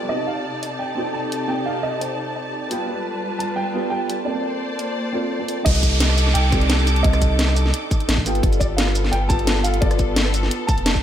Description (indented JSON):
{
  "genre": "liquid drum and bass",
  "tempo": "173 BPM",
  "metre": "4/4",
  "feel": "straight",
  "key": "C dorian",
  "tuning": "A4 = 441 Hz",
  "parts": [
    { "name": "dark concert grand piano", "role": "melody", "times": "0.0-11.0 s", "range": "C5 to A5", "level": "-28 LUFS", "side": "right 1 dB", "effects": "ping-pong delay" },
    { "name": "felt-muted upright piano", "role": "accompaniment", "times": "0.0-11.0 s", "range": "B3 to G5", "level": "-27 LUFS", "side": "right 1 dB", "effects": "lush chorus, ping-pong delay" },
    { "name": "dark studio string section", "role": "sustained chords", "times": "0.0-11.0 s", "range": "C3 to D6", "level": "-27 LUFS", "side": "equal", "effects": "sidechain pumping" },
    { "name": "garage drum kit", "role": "drums", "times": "0.6-11.0 s", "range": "crash cymbal, hi-hat, rim click, shaker, snare drum", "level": "-24 LUFS", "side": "equal", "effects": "studio reverb" },
    { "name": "saturated sub bass", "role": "bass", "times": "5.7-11.0 s", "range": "F1 to C2", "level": "-20 LUFS", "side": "equal", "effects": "none" },
    { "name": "electronic kick drum", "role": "drums", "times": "5.7-11.0 s", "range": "none", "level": "-20 LUFS", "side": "equal", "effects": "studio reverb" },
    { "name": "downlifter", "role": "sound effects", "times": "5.7-8.4 s", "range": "none", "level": "-27 LUFS", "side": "right 1 dB", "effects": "none" }
  ],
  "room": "moderate plate reverb, RT60 1.4 s",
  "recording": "dreamy mix soaked in reverb",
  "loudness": "-18 LUFS",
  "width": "side -10 dB against mid",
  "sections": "0.0-5.7 A section; 5.7-11.0 B section",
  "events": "drop 5.7-11.0",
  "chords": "0.1 Cm69; 2.7 G9; 4.3 Bbmaj7; 5.7 Cm69; 8.3 G9"
}